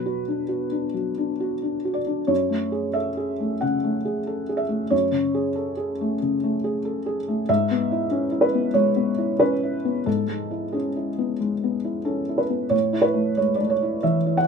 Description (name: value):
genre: neoclassical minimalist piano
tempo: 91 BPM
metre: 4/4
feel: rubato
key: F# minor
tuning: A4 = 440 Hz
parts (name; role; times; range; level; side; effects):
- felt-muted upright piano; solo; 0.0-14.5 s; F#2 to F#5; -21 LUFS; equal; none
room: moderate studio reverb, RT60 0.6 s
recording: minimal, uncompressed stereo recording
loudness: -21 LUFS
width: side -5 dB against mid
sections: 0.0-12.7 A section; 12.7-14.5 A section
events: none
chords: 0.0 Bm; 2.3 F#madd9; 7.5 C#m7/G#; 12.7 A